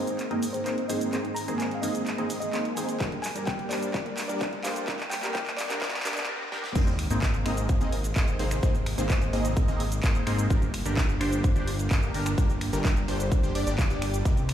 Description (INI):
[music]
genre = EDM, festival progressive house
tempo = 128 BPM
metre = 4/4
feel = straight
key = unclear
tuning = A4 = 440 Hz
[part]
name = bell-like FM electric piano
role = melody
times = 0.0-6.3 s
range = C5 to Bb5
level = -36 LUFS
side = left 2 dB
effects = chorus, digital delay
[part]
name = dark baby grand piano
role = accompaniment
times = 0.0-6.2 s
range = G2 to Bb4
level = -36 LUFS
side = right 1 dB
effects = sidechain pumping, digital delay
[part]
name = supersaw pad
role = sustained chords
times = 0.0-14.5 s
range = G2 to D5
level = -38 LUFS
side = right 1 dB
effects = sidechain pumping, low-pass filter
[part]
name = supersaw stab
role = riff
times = 0.0-14.4 s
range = Bb3 to Eb5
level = -32 LUFS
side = equal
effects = phaser, vintage 12-bit sampler grit, sidechain pumping, low-pass filter, digital delay
[part]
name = riser and sub drop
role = sound effects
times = 1.4-8.6 s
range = none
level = -40 LUFS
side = equal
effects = none
[part]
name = big-room dance drum kit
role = drums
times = 0.1-14.5 s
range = cabasa, crash cymbal, finger snaps, handclaps, hi-hat, snare drum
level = -34 LUFS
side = equal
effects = none
[part]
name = electronic kick drum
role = drums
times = 3.0-14.3 s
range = none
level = -25 LUFS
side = equal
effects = none
[part]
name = fat analog bass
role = bass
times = 6.8-14.5 s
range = G1 to Ab2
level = -30 LUFS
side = equal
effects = sidechain pumping
[sound]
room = little or no reverb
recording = played on a big sound system in a bare room, large studio reverb, high-pass filter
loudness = -25 LUFS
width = side -10 dB against mid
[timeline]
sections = 0.0-6.8 A section; 6.8-14.5 B section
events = build-up 0.0-6.8; drum fill 0.0-6.3, 6.5; filter sweep on supersaw synth 0.0-6.8; filter sweep 0.0-6.8; break 6.3-6.8; drop 6.8-14.5; impact 6.8-8.6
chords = 0.0 Abadd9; 3.0 Gm; 6.8 Abadd9; 10.5 Gm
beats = 0.19 0.66 | 1.13 1.60 2.07 2.54 | 3.00 3.47 3.94 4.41 | 4.88 5.35 5.82 6.29 | 6.75 7.22 7.69 8.16 | 8.63 9.10 9.57 10.04 | 10.51 10.97 11.44 11.91 | 12.38 12.85 13.32 13.79 | 14.26